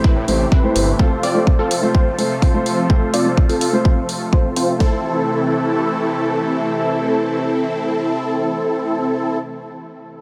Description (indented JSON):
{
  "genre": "EDM, festival progressive house",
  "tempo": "126 BPM",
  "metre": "4/4",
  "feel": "straight",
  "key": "A minor",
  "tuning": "A4 = 439 Hz",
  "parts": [
    { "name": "dark grand piano", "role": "accompaniment", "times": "0.0-9.6 s", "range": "A3 to C5", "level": "-25 LUFS", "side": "equal", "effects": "sidechain pumping, tape echo" },
    { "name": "supersaw pad", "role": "sustained chords", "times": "0.0-9.4 s", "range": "C3 to A4", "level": "-26 LUFS", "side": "equal", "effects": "phaser, sidechain pumping" },
    { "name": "supersaw stab", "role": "riff", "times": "0.0-9.4 s", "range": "C4 to D5", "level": "-23 LUFS", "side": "equal", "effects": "sidechain pumping, low-pass filter, tape echo" },
    { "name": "electronic kick drum", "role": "drums", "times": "0.0-4.9 s", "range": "none", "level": "-17 LUFS", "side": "equal", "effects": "none" },
    { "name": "downlifter", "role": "sound effects", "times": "0.0-1.0 s", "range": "none", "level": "barely audible", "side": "none", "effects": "none" },
    { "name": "detuned saw bass", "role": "bass", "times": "0.2-0.9 s", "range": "G1 to A2", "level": "-22 LUFS", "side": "equal", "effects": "chorus, tube saturation, sidechain pumping" },
    { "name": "electronic hi-hat", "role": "drums", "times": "0.3-4.7 s", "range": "none", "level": "-29 LUFS", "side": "equal", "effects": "none" }
  ],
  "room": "light reverb",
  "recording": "none",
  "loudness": "-18 LUFS",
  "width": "mono",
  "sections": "0.0-4.8 A section; 4.8-8.6 B section",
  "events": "filter sweep on supersaw synth 0.0-4.8",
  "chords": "0.0 Am; 1.0 F; 4.8 Am",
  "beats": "0.04 0.52 | 0.99 1.47 1.95 2.42 | 2.90 3.38 3.85 4.33 | 4.80 5.28 5.76 6.23 | 6.71 7.18 7.66 8.14"
}